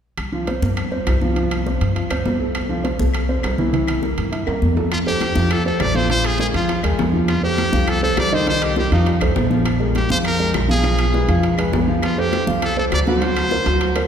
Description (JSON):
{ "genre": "Afro-Cuban jazz", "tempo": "202 BPM", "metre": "4/4", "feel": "straight", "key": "F mixolydian from 4.9 s", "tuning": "A4 = 435 Hz", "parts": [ { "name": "upright bass", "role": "bass", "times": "0.2-14.1 s", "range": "Bb1 to G2", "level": "-21 LUFS", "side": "left 1 dB", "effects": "none" }, { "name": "claves", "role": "percussion", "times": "0.2-14.1 s", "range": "none", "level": "-35 LUFS", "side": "left 6 dB", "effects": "none" }, { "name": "congas", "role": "percussion", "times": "0.2-14.1 s", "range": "none", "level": "-26 LUFS", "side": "right 1 dB", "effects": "none" }, { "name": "timbales", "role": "percussion", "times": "0.2-14.1 s", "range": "none", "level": "-29 LUFS", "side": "right 4 dB", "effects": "none" }, { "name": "warm grand piano", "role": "accompaniment", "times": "0.3-14.1 s", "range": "Eb3 to Gb5", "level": "-22 LUFS", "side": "right 1 dB", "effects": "none" }, { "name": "brilliant trumpet", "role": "melody", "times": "4.9-14.1 s", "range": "Eb4 to D5", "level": "-22 LUFS", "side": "equal", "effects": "none" }, { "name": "bongos", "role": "percussion", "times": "4.9-14.1 s", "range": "none", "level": "-30 LUFS", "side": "left 5 dB", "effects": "none" } ], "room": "wet church reverb, RT60 3.1 s", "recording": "recorded in a church or concert hall", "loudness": "-16 LUFS", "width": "side -8 dB against mid", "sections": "0.2-4.9 A section; 4.9-14.1 B section", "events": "drum fill 4.5-4.9", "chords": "0.2 C7sus4; 2.5 Fmaj7/C; 3.7 C7; 4.9 Fadd9; 6.1 Bb5; 7.3 F9; 8.5 Cm7; 9.1 F; 9.7 Bb5; 10.8 Fdim; 12.0 F69; 13.2 Daug7" }